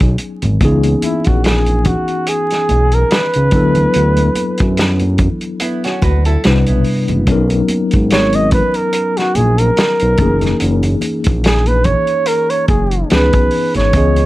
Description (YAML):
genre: R&B, neo-soul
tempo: 72 BPM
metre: 4/4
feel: swing 56% on 16ths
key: C# dorian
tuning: A4 = 441 Hz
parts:
  - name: mellow flugelhorn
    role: melody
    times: 0.0-14.3 s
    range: E4 to D#5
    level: -16 LUFS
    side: right 1 dB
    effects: plate reverb
  - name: mellow tine electric piano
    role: accompaniment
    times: 0.0-14.3 s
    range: C3 to D#5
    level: -18 LUFS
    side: left 2 dB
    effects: medium stereo tremolo, plate reverb
  - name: smooth synth bass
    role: bass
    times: 0.0-14.3 s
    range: F#1 to F#2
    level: -14 LUFS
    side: equal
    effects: none
  - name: warm soul drum kit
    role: drums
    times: 0.0-14.3 s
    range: hi-hat, kick drum, snare drum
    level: -17 LUFS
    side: equal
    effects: none
  - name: congas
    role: percussion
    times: 0.2-14.3 s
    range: none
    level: -26 LUFS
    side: right 2 dB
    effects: none
  - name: hollow-body jazz guitar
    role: second line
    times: 5.6-7.2 s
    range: B3 to B4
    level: -22 LUFS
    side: right 2 dB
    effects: plate reverb
room: light reverb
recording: dark, warm production, vinyl crackle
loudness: -11 LUFS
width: side -17 dB against mid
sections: 0.6-13.9 A section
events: flugelhorn solo 0.6-13.9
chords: 0.0 B69; 0.6 C#m9; 3.5 D69; 6.4 Cmaj9; 7.3 Bmaj9; 10.2 F#13; 13.1 C#m9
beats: | 0.60 1.44 2.27 3.10 | 3.94 4.77 5.61 6.44 | 7.27 8.11 8.94 9.77 | 10.61 11.44 12.27 13.11 | 13.94